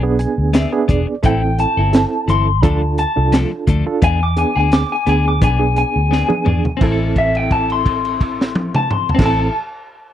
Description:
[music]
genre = straight-eighth soul blues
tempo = 86 BPM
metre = 4/4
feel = swing 54% on 16ths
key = A minor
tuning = A4 = 440 Hz
[part]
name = barky reed electric piano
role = accompaniment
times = 0.0-9.5 s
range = B3 to G#5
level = -21 LUFS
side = right 5 dB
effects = fast tremolo
[part]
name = clean electric guitar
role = stabs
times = 0.0-9.6 s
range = E3 to A4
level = -24 LUFS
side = left 7 dB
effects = none
[part]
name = vintage muted fingered electric bass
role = bass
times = 0.0-9.5 s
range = E1 to E2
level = -18 LUFS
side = equal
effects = none
[part]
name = crunchy breakbeat drum kit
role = drums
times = 0.2-9.4 s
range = crash cymbal, hi-hat, kick drum, snare drum, toms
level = -18 LUFS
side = equal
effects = none
[part]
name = electric guitar through a small old amp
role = melody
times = 1.3-9.6 s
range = E5 to D6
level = -19 LUFS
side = left 3 dB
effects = spring reverb
[sound]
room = little or no reverb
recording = dry, close 1970s-style studio recording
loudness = -14 LUFS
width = side -11 dB against mid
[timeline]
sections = 0.0-6.8 A section; 6.8-9.6 B section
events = reed electric piano fill 0.0-1.2; drum fill 6.1-6.8; held note 6.8-9.2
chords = 0.0 E7; 1.2 Am; 2.6 Dm; 4.0 E7; 6.8 Am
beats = 0.54 | 1.24 1.94 2.63 3.33 | 4.03 4.72 5.42 6.12 | 6.81 7.51 8.21 8.90

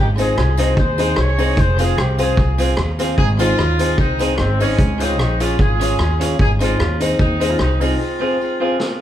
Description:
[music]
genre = ska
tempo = 150 BPM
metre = 4/4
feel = swing 54% on 8ths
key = Ab major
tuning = A4 = 440 Hz
[part]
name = warm horn section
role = melody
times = 0.0-9.0 s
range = Ab3 to Db5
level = -22 LUFS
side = equal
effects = none
[part]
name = upright bass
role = bass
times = 0.0-7.9 s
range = F1 to Eb2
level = -18 LUFS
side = equal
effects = none
[part]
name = clean electric guitar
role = accompaniment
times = 0.2-8.8 s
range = C4 to Ab4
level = -24 LUFS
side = right 3 dB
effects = tape echo
[part]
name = dark upright piano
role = stabs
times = 0.2-8.8 s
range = Eb4 to Db5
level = -23 LUFS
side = left 4 dB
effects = none
[part]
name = vintage drum kit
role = drums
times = 0.2-8.9 s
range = hi-hat, kick drum, rim click, snare drum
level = -21 LUFS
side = equal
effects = none
[part]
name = tambourine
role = percussion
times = 0.2-7.9 s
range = none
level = -38 LUFS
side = left 3 dB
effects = tape echo
[sound]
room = moderate large studio reverb, RT60 1.3 s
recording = band playing live in one room, vinyl crackle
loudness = -14 LUFS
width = side -11 dB against mid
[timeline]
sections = 0.0-9.0 A section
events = break 8.0-9.0; drum fill 8.8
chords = 0.0 Ab; 1.6 Fm; 3.2 Ab; 4.8 Db; 6.4 Ab; 8.0 Fm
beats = 0.37 0.77 1.18 | 1.58 1.98 2.38 2.78 | 3.18 3.58 3.98 4.38 | 4.79 5.19 5.59 5.99 | 6.39 6.79 7.19 7.59 | 7.99 8.39 8.79

